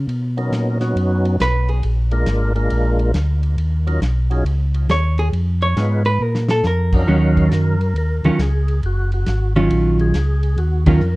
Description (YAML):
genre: soul jazz organ trio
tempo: 137 BPM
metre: 4/4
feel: swing 66% on 8ths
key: Eb minor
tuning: A4 = 439 Hz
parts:
  - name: mellow tonewheel organ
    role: bass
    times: 0.0-11.2 s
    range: Gb1 to B2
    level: -17 LUFS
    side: equal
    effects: overdrive, chorus vibrato, slow rotary speaker
  - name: warm soul drum kit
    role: drums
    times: 0.1-11.1 s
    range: crash cymbal, hi-hat, kick drum, ride cymbal, snare drum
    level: -22 LUFS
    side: equal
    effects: none
  - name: percussive tonewheel organ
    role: melody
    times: 0.4-11.2 s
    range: F#3 to F5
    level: -25 LUFS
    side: equal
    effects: slow rotary speaker, overdrive, chorus vibrato, tape echo
  - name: vintage hollow-body jazz guitar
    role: accompaniment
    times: 1.4-1.8, 4.9-11.0 s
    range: Eb3 to Db5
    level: -18 LUFS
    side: right 1 dB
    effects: none
room: studio reverb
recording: rough home demo mix, cassette tape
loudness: -15 LUFS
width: side -21 dB against mid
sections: 0.0-7.1 A section; 7.1-11.2 B section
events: hollow-body jazz guitar solo 0.0-7.1; drum fill 6.2-6.6; band accent 10.8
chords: 0.1 Bmaj7; 1.8 Bb7; 3.6 Ebm9; 5.3 Fm7b5; 6.2 Bb5; 7.1 Ebm9